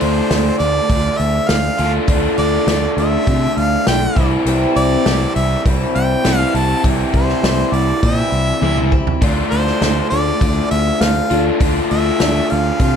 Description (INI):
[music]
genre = folk rock and heartland rock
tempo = 101 BPM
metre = 4/4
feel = straight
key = D minor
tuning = A4 = 438 Hz
[part]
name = clear harmonica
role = melody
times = 0.0-13.0 s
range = C5 to A5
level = -20 LUFS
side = equal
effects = none
[part]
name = picked twelve-string acoustic guitar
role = accompaniment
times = 0.0-13.0 s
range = C3 to F4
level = -21 LUFS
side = left 4 dB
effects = none
[part]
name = raw garage guitar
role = riff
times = 0.0-13.0 s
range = C3 to F4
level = -20 LUFS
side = right 2 dB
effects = overdrive, spring reverb
[part]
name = fingered electric bass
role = bass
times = 0.0-13.0 s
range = B1 to C3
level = -19 LUFS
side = equal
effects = none
[part]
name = natural country drum kit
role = drums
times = 0.0-12.9 s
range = hi-hat, kick drum, snare drum, toms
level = -19 LUFS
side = equal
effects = none
[sound]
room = light reverb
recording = dark, warm production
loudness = -13 LUFS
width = side -7 dB against mid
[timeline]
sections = 0.0-13.0 A section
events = drum fill 8.6-9.2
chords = 0.0 Dm; 4.2 C; 9.2 Dm